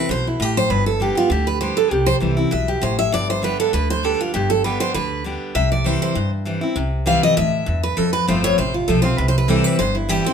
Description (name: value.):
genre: bluegrass.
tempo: 198 BPM.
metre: 4/4.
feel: straight.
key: C major.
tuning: A4 = 440 Hz.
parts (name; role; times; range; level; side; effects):
picked steel-string acoustic guitar; melody; 0.0-10.3 s; E4 to F5; -20 LUFS; right 1 dB; none.
picked steel-string acoustic guitar; accompaniment; 0.0-10.3 s; F2 to G4; -22 LUFS; left 2 dB; none.
upright bass; bass; 0.1-10.2 s; G1 to G2; -23 LUFS; right 1 dB; none.
room: moderate studio reverb, RT60 0.9 s.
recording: minimal, uncompressed stereo recording.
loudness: -17 LUFS.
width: side -7 dB against mid.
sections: 0.0-6.8 A section; 6.8-10.3 A section.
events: none.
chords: 0.0 C; 0.7 G; 1.9 C; 3.1 G; 5.6 C; 8.0 F; 9.2 C.